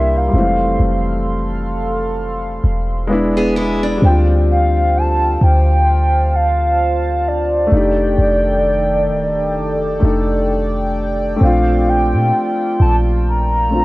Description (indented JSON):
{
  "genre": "contemporary R&B",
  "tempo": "65 BPM",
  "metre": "4/4",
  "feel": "swing 58% on 16ths",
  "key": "unclear",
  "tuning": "A4 = 441 Hz",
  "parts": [
    { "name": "hollow clarinet-like synth lead", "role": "melody", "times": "0.0-13.8 s", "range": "D5 to Bb5", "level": "-18 LUFS", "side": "equal", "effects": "chorus, tape echo" },
    { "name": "warm concert grand piano", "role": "accompaniment", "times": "0.0-13.8 s", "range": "E3 to A4", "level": "-20 LUFS", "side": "left 2 dB", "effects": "none" },
    { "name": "chorused pulse-width pad", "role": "sustained chords", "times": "0.0-13.8 s", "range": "Eb3 to C6", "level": "-22 LUFS", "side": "equal", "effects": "none" },
    { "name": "clean 808-style bass", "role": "bass", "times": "0.0-13.8 s", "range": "Eb1 to Bb2", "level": "-17 LUFS", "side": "equal", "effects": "none" },
    { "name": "picked acoustic archtop guitar", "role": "arpeggios", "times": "3.4-4.3 s", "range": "G#3 to G#4", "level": "-22 LUFS", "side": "right 1 dB", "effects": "tape echo" }
  ],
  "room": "light reverb, small room ambience",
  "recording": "worn, warbling old tape, cassette tape, warbly pitch drift",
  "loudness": "-13 LUFS",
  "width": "side -19 dB against mid",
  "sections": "0.0-4.0 A section; 4.0-13.8 B section",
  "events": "none",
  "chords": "0.3 Fmaj7; 3.1 E7; 4.0 Dm7; 7.7 F13; 11.4 Bbmaj7"
}